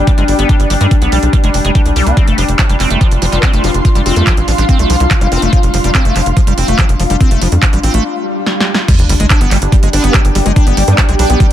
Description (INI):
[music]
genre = psychedelic trance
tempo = 143 BPM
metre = 4/4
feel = straight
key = unclear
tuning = A4 = 440 Hz
[part]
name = pulsing gated texture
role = sustained chords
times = 0.0-11.5 s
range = G3 to D4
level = -20 LUFS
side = left 2 dB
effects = chorus, built-in reverb, sidechain pumping
[part]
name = tight sequencer bass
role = bass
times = 0.0-11.4 s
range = F1 to G2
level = -13 LUFS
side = equal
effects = none
[part]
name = ethereal airy pad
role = texture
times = 0.0-11.5 s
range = F4 to C6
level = -19 LUFS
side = left 1 dB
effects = ensemble chorus, built-in reverb, sidechain pumping
[part]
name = liquid acid bass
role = riff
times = 0.1-11.5 s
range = F3 to D4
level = -18 LUFS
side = moving between left 5 dB and right 5 dB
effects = chorus, auto-pan, sidechain pumping, tape echo
[part]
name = electronic kick drum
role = drums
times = 0.1-11.5 s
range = none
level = -11 LUFS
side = equal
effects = none
[part]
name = techno drum kit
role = drums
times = 0.1-11.5 s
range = crash cymbal, handclaps, hi-hat, snare drum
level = -18 LUFS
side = right 2 dB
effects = none
[part]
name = vowel-sweep wobble bass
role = second line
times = 3.2-5.4, 9.9-11.0 s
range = G3 to B3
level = -26 LUFS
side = left 2 dB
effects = analog chorus, sidechain pumping, high-pass filter, digital delay
[part]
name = swell and sub drop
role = sound effects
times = 8.2-10.6 s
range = none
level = -20 LUFS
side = right 1 dB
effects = none
[sound]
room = little or no reverb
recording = none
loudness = -9 LUFS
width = side -11 dB against mid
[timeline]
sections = 0.0-8.9 A section; 8.9-11.5 B section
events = break 8.0-8.9; swell 8.2-8.9; drum fill 8.5-8.9; drop 8.9-11.5; impact 8.9-10.6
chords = 0.0 G5; 2.2 F5; 8.9 G5